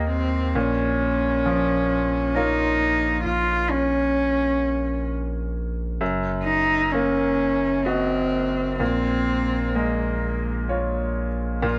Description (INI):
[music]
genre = neoclassical piano and strings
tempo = 65 BPM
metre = 3/4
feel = rubato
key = Bb minor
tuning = A4 = 441 Hz
[part]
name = warm cello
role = second line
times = 0.0-11.8 s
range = Bb3 to F4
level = -25 LUFS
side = equal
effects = none
[part]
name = bright upright piano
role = accompaniment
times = 0.0-11.8 s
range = Eb2 to Eb5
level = -29 LUFS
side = equal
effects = none
[part]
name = saturated sub bass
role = bass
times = 0.0-11.8 s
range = Gb1 to Eb2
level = -30 LUFS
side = equal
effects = none
[sound]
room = light reverb, small room ambience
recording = none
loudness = -23 LUFS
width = mono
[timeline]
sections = 0.0-11.6 A section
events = none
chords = 0.0 Eb; 0.5 Bbm; 6.0 Gb6; 8.8 Bbm7